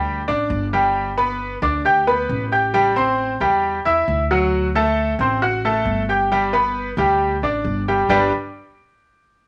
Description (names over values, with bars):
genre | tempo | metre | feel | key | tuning
latin, Cuban son and guajira | 134 BPM | 4/4 | straight | G major | A4 = 440 Hz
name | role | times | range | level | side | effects
bright grand piano | arpeggios | 0.0-8.3 s | F#3 to G6 | -20 LUFS | equal | none
upright bass | bass | 0.0-8.3 s | G1 to E2 | -28 LUFS | equal | none
room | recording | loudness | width
moderate studio reverb, RT60 0.7 s | nothing above 10.8 kHz | -19 LUFS | mono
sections
0.0-8.1 A section; 8.1-9.5 B section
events
none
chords
0.0 G; 2.7 Am7; 4.5 D7; 6.3 G